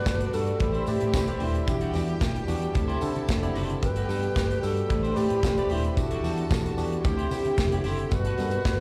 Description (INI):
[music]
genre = disco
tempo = 112 BPM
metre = 4/4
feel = straight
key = A dorian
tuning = A4 = 443 Hz
[part]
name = bright reedy alto flute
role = melody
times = 0.0-8.8 s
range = E4 to B4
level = -33 LUFS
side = equal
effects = slapback echo
[part]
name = clear studio string section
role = second line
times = 0.0-8.8 s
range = D4 to B5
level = -40 LUFS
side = equal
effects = slapback echo
[part]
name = tine electric piano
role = accompaniment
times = 0.0-8.8 s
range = D3 to E5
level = -34 LUFS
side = equal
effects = slapback echo
[part]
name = rich studio string section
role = sustained chords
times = 0.0-8.8 s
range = B2 to G4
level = -39 LUFS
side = equal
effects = none
[part]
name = clean electric guitar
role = accompaniment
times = 0.1-8.7 s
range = G3 to D5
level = -41 LUFS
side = equal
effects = slapback echo
[part]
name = vintage muted fingered electric bass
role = bass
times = 0.1-8.8 s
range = D#1 to D3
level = -32 LUFS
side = equal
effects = none
[part]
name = modern studio drum kit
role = drums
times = 0.1-8.8 s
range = hi-hat, kick drum, snare drum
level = -32 LUFS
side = equal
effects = none
[part]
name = tambourine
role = percussion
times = 0.1-8.8 s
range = none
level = -50 LUFS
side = equal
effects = none
[part]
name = congas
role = percussion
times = 8.1-8.8 s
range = none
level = -41 LUFS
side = equal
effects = none
[sound]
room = light reverb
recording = live gig heard through the venue's PA, club reverb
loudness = -26 LUFS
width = mono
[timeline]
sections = 0.0-8.8 A section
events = none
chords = 0.0 Gmaj9; 0.6 Am11; 1.7 Em9; 2.8 D9sus4; 3.8 Gmaj9; 4.9 Am11; 6.0 Em9; 7.0 D9sus4; 8.1 Gmaj9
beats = 0.07 0.61 1.14 | 1.68 2.22 2.75 3.29 | 3.83 4.36 4.90 5.44 | 5.97 6.51 7.05 7.58 | 8.12 8.66